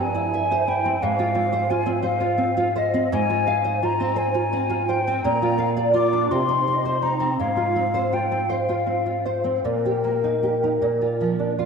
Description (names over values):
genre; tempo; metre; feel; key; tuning
romantic duo for flute and classical guitar; 51-60 BPM (dotted quarters); 6/8; rubato; unclear; A4 = 440 Hz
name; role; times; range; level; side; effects
mellow hollow silver concert flute; melody; 0.0-11.6 s; Bb4 to D6; -23 LUFS; left 2 dB; tape echo
nylon-string guitar; accompaniment; 0.0-11.7 s; G2 to F5; -22 LUFS; right 2 dB; ensemble chorus
room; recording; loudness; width
wet lush hall reverb, RT60 3.1 s; dreamy mix soaked in reverb; -20 LUFS; side -5 dB against mid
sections
0.0-11.7 A section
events
none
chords
0.0 C/G; 1.0 Fm/Ab; 5.2 Bb; 6.3 Cm; 7.4 Fm/Ab; 9.6 Eb/Bb; 10.8 Bb